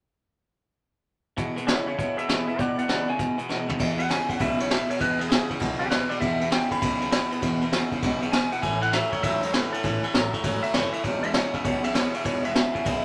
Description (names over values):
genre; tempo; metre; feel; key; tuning
rockabilly; 199 BPM; 4/4; swing 64% on 8ths; E major; A4 = 444 Hz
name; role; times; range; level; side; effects
picked acoustic archtop guitar; accompaniment; 1.4-13.0 s; E2 to E4; -33 LUFS; equal; none
twangy electric guitar; riff; 1.4-13.0 s; E2 to F#3; -32 LUFS; equal; none
vintage brush drum kit; drums; 1.4-12.9 s; crash cymbal, hi-hat, kick drum, ride cymbal, snare drum, toms; -29 LUFS; equal; none
electric guitar through a small old amp; melody; 1.7-13.0 s; E4 to B5; -31 LUFS; equal; none
upright bass; bass; 3.8-13.0 s; E1 to E2; -37 LUFS; equal; none
room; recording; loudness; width
moderate studio reverb, RT60 0.7 s; none; -25 LUFS; mono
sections
1.4-3.8 A section; 3.8-13.0 B section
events
drum fill 3.5-3.8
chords
1.4 E; 8.6 A; 11.0 E